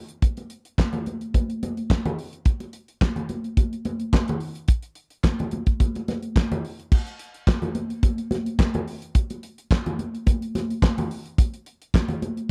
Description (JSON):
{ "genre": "disco", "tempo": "108 BPM", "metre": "4/4", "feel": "straight", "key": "none", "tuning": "none", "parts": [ { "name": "damped 70s drum kit", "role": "drums", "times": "0.1-12.5 s", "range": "crash cymbal, handclaps, hi-hat, kick drum, snare drum", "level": "-22 LUFS", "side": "equal", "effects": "none" }, { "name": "congas", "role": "percussion", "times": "0.2-12.4 s", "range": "none", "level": "-30 LUFS", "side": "equal", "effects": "none" } ], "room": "little or no reverb", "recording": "dry, close 1970s-style studio recording", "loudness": "-25 LUFS", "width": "mono", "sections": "0.0-6.9 A section; 6.9-12.5 B section", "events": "none", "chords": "none" }